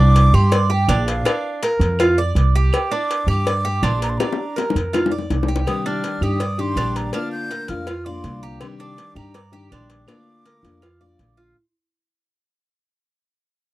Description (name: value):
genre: latin, Cuban son and guajira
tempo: 163 BPM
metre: 4/4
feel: straight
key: unclear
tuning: A4 = 440 Hz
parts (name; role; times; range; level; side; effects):
- breathy jazz flute; melody; 0.0-11.4 s; F5 to G6; -26 LUFS; right 1 dB; none
- Cuban tres; arpeggios; 0.0-11.6 s; D4 to D5; -24 LUFS; right 2 dB; none
- upright bass; bass; 0.0-11.5 s; Bb1 to G2; -18 LUFS; right 1 dB; none
- cowbell and bongos; percussion; 0.2-11.4 s; none; -25 LUFS; left 4 dB; none
- claves; percussion; 0.3-11.0 s; none; -35 LUFS; right 8 dB; none
- picked steel-string acoustic guitar; accompaniment; 5.7-11.6 s; C3 to G4; -29 LUFS; left 3 dB; none
room: little or no reverb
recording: dry, close 1970s-style studio recording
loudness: -17 LUFS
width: side -17 dB against mid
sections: 0.0-11.6 A section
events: fade-out 0.0-11.6; drum fill 4.2-5.7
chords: 0.0 Csus2; 1.3 Bb; 2.7 Bb6; 4.2 Bb; 5.7 Cmadd9; 7.1 Bb; 8.6 Cmadd9; 10.1 Bb